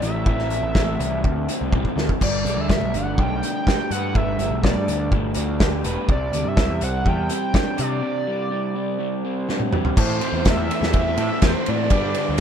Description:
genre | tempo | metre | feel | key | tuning
indie rock | 124 BPM | 4/4 | straight | unclear | A4 = 440 Hz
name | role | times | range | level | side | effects
overdriven synth lead | melody | 0.0-12.4 s | C5 to G5 | -27 LUFS | right 1 dB | analog delay
crunchy overdriven guitar | riff | 0.0-12.4 s | G2 to B4 | -25 LUFS | equal | none
fuzz picked electric bass | bass | 0.0-12.4 s | E1 to C3 | -25 LUFS | equal | overdrive
loose indie drum kit | drums | 0.0-12.4 s | crash cymbal, hi-hat, kick drum, ride cymbal, snare drum, toms | -21 LUFS | equal | none
room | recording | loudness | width
studio reverb | rough home demo mix | -19 LUFS | side -8 dB against mid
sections
0.0-2.2 A section; 2.2-10.0 B section; 10.0-12.4 C section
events
drum fill 1.7-2.2, 9.5-10.0; break 8.0-10.0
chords
0.0 Am; 2.2 Gadd9; 6.1 Csus2; 10.0 Am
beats
| 0.27 0.75 1.24 1.73 | 2.21 2.70 3.19 3.67 | 4.16 4.64 5.13 5.61 | 6.09 6.58 7.06 7.55 | 8.03 8.52 9.00 9.49 | 9.97 10.46 10.94 11.43 | 11.91 12.40

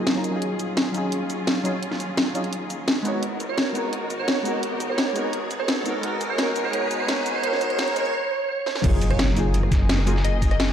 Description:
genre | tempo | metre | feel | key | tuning
liquid drum and bass | 171 BPM | 4/4 | straight | unclear | A4 = 441 Hz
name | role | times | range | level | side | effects
deep mellow chord stab | accompaniment | 0.0-10.1 s | F#3 to C#5 | -28 LUFS | equal | chorus, cassette tape, dub echo
warm symphonic string section | sustained chords | 0.0-10.7 s | F#3 to A#4 | -32 LUFS | left 1 dB | none
dark detuned saw bass | bass | 0.0-10.7 s | D#1 to G#1 | -29 LUFS | equal | tube saturation, high-pass filter
riser and impact | sound effects | 1.4-10.2 s | none | -32 LUFS | equal | none
drum and bass drum kit | drums | 0.1-10.7 s | crash cymbal, hi-hat, rim click, shaker, snare drum | -26 LUFS | equal | overdrive
glassy wavetable pluck | melody | 3.5-10.7 s | C#5 to D#5 | -28 LUFS | right 4 dB | chorus, dub echo
dusty soul sampler-style drum kit | drums | 8.8-10.7 s | hi-hat, snare drum | -33 LUFS | equal | high-pass filter on hats, high-pass filter on snare
electronic kick drum | drums | 8.8-10.5 s | none | -21 LUFS | equal | overdrive
room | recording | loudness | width
wet scoring stage reverb, RT60 1.6 s | dark, warm production, high-pass filter | -21 LUFS | side -9 dB against mid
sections
0.0-8.8 A section; 8.8-10.7 B section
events
build-up 0.0-8.8; riser 1.4-8.1; break 8.1-8.8; drum fill 8.7; drop 8.8-10.7; impact 8.8-10.2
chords
0.2 D#m11; 3.1 G#m9; 6.0 G#m11; 8.8 F#maj13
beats
0.07 | 0.42 0.77 1.12 1.47 | 1.82 2.18 2.53 2.88 | 3.23 3.58 3.93 4.28 | 4.63 4.98 5.33 5.68 | 6.04 6.39 6.74 7.09 | 7.44 7.79 8.14 8.49 | 8.84 9.19 9.54 9.89 | 10.25 10.60

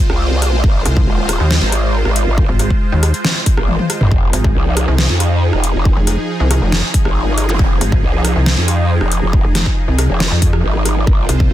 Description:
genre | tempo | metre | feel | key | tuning
heavy wobble dubstep | 138 BPM | 4/4 | half-time | F minor | A4 = 438 Hz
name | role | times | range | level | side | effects
supersaw pad | sustained chords | 0.0-11.5 s | F3 to C5 | -21 LUFS | right 1 dB | phaser, sidechain pumping
growl bass | bass | 0.1-11.5 s | Eb1 to F2 | -16 LUFS | equal | chorus, overdrive
dubstep drum kit | drums | 0.1-11.4 s | hi-hat, rim click, snare drum, toms | -18 LUFS | equal | overdrive
electronic kick drum | drums | 0.6-11.5 s | none | -14 LUFS | equal | overdrive
pulsing pluck wobble bass | bass | 0.9-11.5 s | F1 to F2 | -14 LUFS | equal | chorus, overdrive
zap | sound effects | 7.5-7.6 s | none | -25 LUFS | equal | none
room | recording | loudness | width
little or no reverb | dense, heavily limited modern master | -12 LUFS | side -13 dB against mid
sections
0.0-11.5 A section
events
drum fill 3.7-4.1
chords
0.0 Ab6; 4.1 Fm7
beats
0.20 | 0.64 1.07 1.51 1.94 | 2.38 2.81 3.25 3.68 | 4.12 4.55 4.99 5.42 | 5.86 6.29 6.72 7.16 | 7.59 8.03 8.46 8.90 | 9.33 9.77 10.20 10.64 | 11.07 11.51

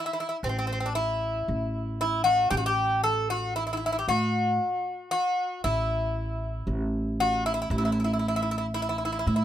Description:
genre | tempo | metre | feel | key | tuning
Turkish makam ensemble | 115 BPM (eighths) | 10/8 | straight | A makam huseyni | A4 = 438 Hz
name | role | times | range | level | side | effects
Greek bouzouki | melody | 0.0-9.4 s | C4 to A4 | -26 LUFS | left 1 dB | none
upright bass | bass | 0.4-9.4 s | A1 to A2 | -29 LUFS | right 1 dB | none
room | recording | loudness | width
light reverb | minimal, uncompressed stereo recording | -25 LUFS | side -11 dB against mid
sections
0.0-9.4 A section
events
none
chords
none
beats
0.42 0.94 1.47 1.99 | 2.50 3.02 3.54 4.07 4.58 5.11 5.62 6.14 6.66 7.18 | 7.70 8.22 8.74 9.26

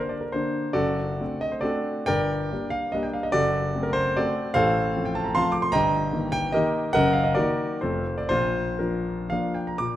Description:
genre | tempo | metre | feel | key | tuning
classical, romantic triple-time dance for piano with dotted rhythms | 115-160 BPM | 3/4 | rubato | Bb major from 4.6 s | A4 = 445 Hz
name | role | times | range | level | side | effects
warm concert grand piano | solo | 0.0-10.0 s | F1 to D6 | -22 LUFS | equal | none
room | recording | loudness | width
wet recital hall reverb, RT60 1.6 s | none | -22 LUFS | side -13 dB against mid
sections
0.0-9.8 A section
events
none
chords
0.0 Gm (rootless); 0.8 D7/F#; 2.1 Gm; 3.3 D7/F#; 4.6 F/A; 5.7 Eb/G; 6.9 Ebm/Gb; 7.8 F; 8.3 Bb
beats
0.34 | 0.76 1.20 1.64 | 2.10 2.52 2.94 | 3.35 3.76 4.17 | 4.55 4.94 5.35 | 5.74 6.13 6.55 | 6.94 7.36 7.81 | 8.30 8.80 9.31 | 9.79

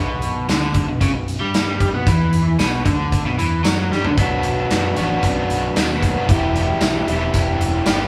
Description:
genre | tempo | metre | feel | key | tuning
indie rock | 114 BPM | 4/4 | straight | B minor | A4 = 439 Hz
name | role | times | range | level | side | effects
overdriven electric guitar | riff | 0.0-8.1 s | E2 to G4 | -22 LUFS | equal | harmonic tremolo
picked electric bass | bass | 0.0-8.1 s | E1 to B2 | -27 LUFS | equal | none
big rock drum kit | drums | 0.2-8.0 s | hi-hat, kick drum, snare drum, tambourine, toms | -22 LUFS | equal | none
room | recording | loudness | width
wet large studio reverb, RT60 1.4 s | band playing live in one room | -19 LUFS | mono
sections
0.0-4.2 A section; 4.2-8.1 B section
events
drum fill 3.9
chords
0.0 Bm; 6.3 Em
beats
0.50 1.03 1.55 | 2.08 2.61 3.14 3.67 | 4.19 4.72 5.25 5.77 | 6.30 6.83 7.35 7.88

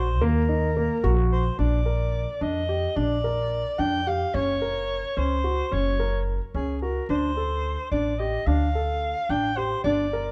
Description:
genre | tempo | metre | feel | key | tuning
contemporary instrumental, chamber music in an uneven meter | 218 BPM (eighths) | 5/8 | straight | Bb major | A4 = 439 Hz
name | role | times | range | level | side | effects
breathy soprano saxophone | melody | 0.0-10.3 s | Ab4 to G5 | -30 LUFS | equal | none
warm baby grand piano | arpeggios | 0.0-10.3 s | Bb3 to Bb4 | -30 LUFS | equal | none
upright bass | bass | 0.0-10.3 s | Gb1 to F2 | -28 LUFS | equal | none
room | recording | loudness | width
light reverb | dark, warm production | -25 LUFS | mono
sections
0.0-1.6 A section; 1.6-10.3 B section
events
none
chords
0.0 Ebm; 1.6 Bb; 4.3 Gb; 7.1 Dm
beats
| 0.22 0.49 0.77 1.04 1.32 | 1.59 1.87 2.14 2.42 2.69 | 2.97 3.24 3.52 3.79 4.07 | 4.34 4.62 4.89 5.17 5.44 | 5.72 5.99 6.27 6.54 6.82 | 7.09 7.37 7.64 7.92 8.19 | 8.47 8.74 9.02 9.29 9.57 | 9.85 10.12

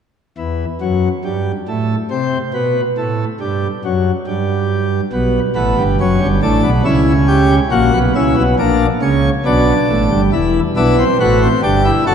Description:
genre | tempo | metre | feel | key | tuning
classical, baroque-style 4-part fugue for pipe organ | 69 BPM | 3/4 | straight | E minor | A4 = 439 Hz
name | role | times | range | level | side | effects
pipe organ, plenum | solo | 0.4-12.1 s | E1 to A4 | -13 LUFS | equal | none
room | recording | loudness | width
wet church reverb, RT60 3.1 s | dark, warm production | -13 LUFS | side -7 dB against mid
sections
0.0-10.3 A section; 10.3-12.1 B section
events
none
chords
0.0 N.C.; 5.1 Bm; 6.9 C#dim; 7.7 F#7/A#; 9.5 Bm; 10.3 Em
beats
0.82 1.69 | 2.55 3.41 4.27 | 5.13 5.99 6.85 | 7.72 8.59 9.46 | 10.33 11.20 12.07

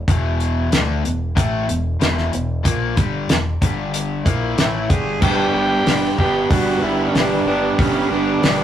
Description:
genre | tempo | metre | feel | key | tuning
classic rock | 93 BPM | 4/4 | straight | unclear | A4 = 440 Hz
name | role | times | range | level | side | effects
growling fingered electric bass | bass | 0.0-8.6 s | E1 to D2 | -25 LUFS | equal | overdrive
cranked stack guitar | riff | 0.1-8.6 s | E2 to D4 | -23 LUFS | left 3 dB | overdrive
damped 70s drum kit | drums | 0.1-8.6 s | crash cymbal, hi-hat, kick drum, snare drum | -18 LUFS | equal | none
raspy tenor saxophone | melody | 4.2-8.6 s | C#4 to G#4 | -22 LUFS | right 1 dB | none
tonewheel organ | sustained chords | 5.2-8.6 s | D3 to B4 | -28 LUFS | equal | none
raw garage guitar | riff | 5.2-8.6 s | G2 to G4 | -20 LUFS | right 5 dB | overdrive
room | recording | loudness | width
moderate studio reverb, RT60 0.6 s | rough rehearsal-room recording | -16 LUFS | side -10 dB against mid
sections
0.0-5.2 A section; 5.2-8.6 B section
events
none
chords
0.0 E5; 3.6 G5; 4.2 Gm13; 5.2 G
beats
| 0.06 0.71 1.35 2.00 | 2.64 3.28 3.93 4.57 | 5.21 5.86 6.50 7.14 | 7.78 8.42

